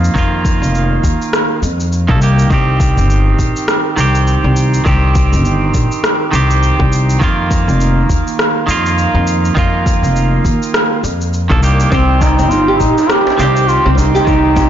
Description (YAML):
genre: organic downtempo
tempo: 102 BPM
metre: 4/4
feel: swing 58% on 16ths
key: C minor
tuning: A4 = 440 Hz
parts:
  - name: clean electric guitar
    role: accompaniment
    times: 0.0-14.7 s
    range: Eb3 to A4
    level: -17 LUFS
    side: right 3 dB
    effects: sidechain pumping, tape echo, shimmer reverb
  - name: upright bass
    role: bass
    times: 0.0-14.7 s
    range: F1 to F2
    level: -13 LUFS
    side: left 1 dB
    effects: tube saturation, sidechain pumping
  - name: electronic shaker and rim click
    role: drums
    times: 0.0-14.7 s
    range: none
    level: -20 LUFS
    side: equal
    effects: overdrive
  - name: electronic kick drum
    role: drums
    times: 0.2-14.7 s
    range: none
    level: -16 LUFS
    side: left 1 dB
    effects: overdrive
  - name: warm duduk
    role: melody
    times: 11.9-14.7 s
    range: C4 to G4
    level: -14 LUFS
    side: right 1 dB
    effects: shimmer reverb
  - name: nylon-string guitar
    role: arpeggios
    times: 11.9-14.7 s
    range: C4 to G4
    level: -16 LUFS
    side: right 1 dB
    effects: tape echo, shimmer reverb
  - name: djembe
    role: percussion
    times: 12.2-14.7 s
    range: none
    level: -23 LUFS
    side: right 2 dB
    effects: none
room: moderate concert hall reverb, RT60 2.4 s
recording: blown-out, overdriven recording, overdrive, nothing above 7.5 kHz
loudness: -10 LUFS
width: side -10 dB against mid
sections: 0.0-14.7 A section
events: none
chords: 0.0 F7sus4; 2.5 Cm; 7.2 F7sus4; 11.9 Cm